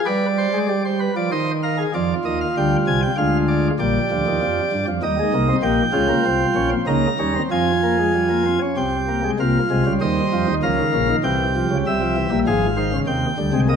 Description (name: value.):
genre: classical, baroque-style 4-part fugue for pipe organ.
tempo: 97 BPM.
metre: 3/4.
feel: straight.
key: F minor.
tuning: A4 = 440 Hz.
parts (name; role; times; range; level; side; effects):
chamber organ, principal chorus; solo; 0.0-13.8 s; Ab1 to Bb5; -17 LUFS; equal; none.
room: wet scoring stage reverb, RT60 1.8 s.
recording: none.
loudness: -17 LUFS.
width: side -7 dB against mid.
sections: 0.0-1.9 A section; 1.9-9.4 B section; 9.4-13.8 A section.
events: none.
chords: 0.1 G; 1.3 Cm/Eb; 1.9 Fm; 3.2 Ddim; 3.8 Gm/Bb; 5.0 Eb; 5.6 Gdim/Bb; 7.5 Csus4/F; 8.8 C5; 9.4 Fm/C; 10.6 Bbm/Db; 11.2 C; 12.5 Fm/Ab; 13.1 Cm.